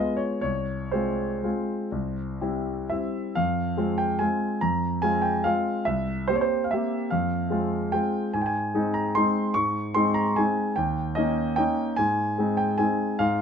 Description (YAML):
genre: classical, piano waltz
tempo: 117-156 BPM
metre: 3/4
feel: rubato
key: F minor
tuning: A4 = 442 Hz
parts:
  - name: clear grand piano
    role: solo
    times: 0.0-13.4 s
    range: C2 to Db6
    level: -23 LUFS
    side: equal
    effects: none
room: moderate stone room reverb, RT60 0.9 s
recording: nothing above 7.9 kHz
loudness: -23 LUFS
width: side -7 dB against mid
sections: 0.0-3.4 A section; 3.4-13.4 B section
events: none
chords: 0.4 Fm/C; 1.9 C; 3.4 Fm; 5.9 C7; 7.1 Fm; 8.3 Ab; 10.8 Eb7; 12.0 Ab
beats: | 0.44 0.93 1.44 | 1.94 2.42 2.90 | 3.37 3.78 4.21 | 4.63 5.04 5.46 | 5.88 6.28 6.70 | 7.11 7.51 7.93 | 8.33 8.74 9.15 | 9.55 9.95 10.37 | 10.77 11.17 11.59 | 11.99 12.38 12.80 | 13.20